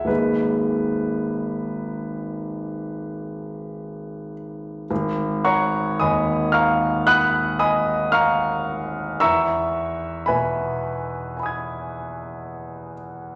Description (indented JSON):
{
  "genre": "classical, impressionist solo piano",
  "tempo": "48-58 BPM",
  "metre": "4/4",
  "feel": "rubato",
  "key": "G# minor",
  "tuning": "A4 = 440 Hz",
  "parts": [
    { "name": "warm concert grand piano", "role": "solo", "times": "0.0-13.4 s", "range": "G#1 to G#6", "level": "-23 LUFS", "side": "equal", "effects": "none" }
  ],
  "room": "wet recital hall reverb, RT60 1.4 s",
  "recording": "none",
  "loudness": "-22 LUFS",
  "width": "mono",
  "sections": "0.0-4.9 A section; 4.9-13.4 A section",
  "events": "none",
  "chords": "0.1 G#madd9; 4.9 G#m7; 9.2 Emaj7"
}